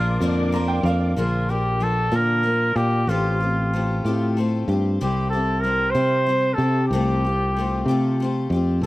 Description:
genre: rock.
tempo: 63 BPM (dotted quarters).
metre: 6/8.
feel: straight.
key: unclear.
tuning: A4 = 440 Hz.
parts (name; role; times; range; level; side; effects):
clear flugelhorn; melody; 0.0-8.9 s; F4 to C5; -23 LUFS; equal; slapback echo.
clear upright piano; accompaniment; 0.0-1.1 s; D4 to Bb5; -29 LUFS; right 3 dB; slapback echo.
picked twelve-string acoustic guitar; accompaniment; 0.0-8.9 s; Bb2 to Bb4; -27 LUFS; left 4 dB; slapback echo.
tonewheel organ; sustained chords; 0.0-1.1 s; Bb3 to D6; -30 LUFS; equal; slow rotary speaker, chorus vibrato.
fingered electric bass; bass; 0.0-8.9 s; A1 to C3; -22 LUFS; equal; none.
room: little or no reverb.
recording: recorded outdoors, with no room sound.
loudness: -19 LUFS.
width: side -18 dB against mid.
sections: 0.0-1.2 A section; 1.2-8.9 B section.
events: upright piano fill 0.2-1.2.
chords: 0.0 Bb; 3.1 Fadd9/A; 5.0 C; 6.9 Fadd9/C.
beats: 0.22 | 1.17 2.13 | 3.09 4.04 | 5.00 5.96 | 6.92 7.88 | 8.83.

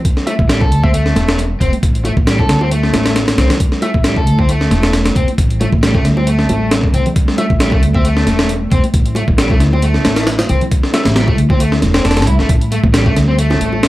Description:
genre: breakbeat, breaks.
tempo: 135 BPM.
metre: 4/4.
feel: swing 54% on 16ths.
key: A minor pentatonic.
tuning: A4 = 439 Hz.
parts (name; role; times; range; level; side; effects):
warbly tape-like pad; sustained chords; 0.0-13.9 s; G3 to E4; -23 LUFS; left 2 dB; chorus, built-in reverb, vintage 12-bit sampler grit, sidechain pumping.
breakbeat sampler-style drum kit; drums; 0.0-13.9 s; hi-hat, kick drum, snare drum; -14 LUFS; equal; none.
hollow square pluck; melody; 0.3-4.0, 7.4-11.1 s; E5; -25 LUFS; left 1 dB; chorus, old record sound, analog delay.
overdriven semi-hollow guitar; riff; 0.3-13.8 s; G3 to A4; -20 LUFS; equal; analog delay.
bongos and congas; percussion; 0.3-13.8 s; none; -22 LUFS; right 1 dB; none.
upright bass; bass; 0.4-13.9 s; E1 to D2; -15 LUFS; equal; none.
room: digital ambience.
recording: dry, gritty hardware recording, vinyl crackle.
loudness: -11 LUFS.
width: side -16 dB against mid.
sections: 0.0-12.5 A section; 12.5-13.9 B section.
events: drop 12.5-13.9.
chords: 0.0 Am7.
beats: | 0.05 0.50 0.94 1.39 | 1.83 2.27 2.72 3.16 | 3.61 4.05 4.50 4.94 | 5.39 5.83 6.28 6.72 | 7.16 7.61 8.05 8.50 | 8.94 9.39 9.83 10.28 | 10.72 11.16 11.61 12.05 | 12.50 12.94 13.39 13.83.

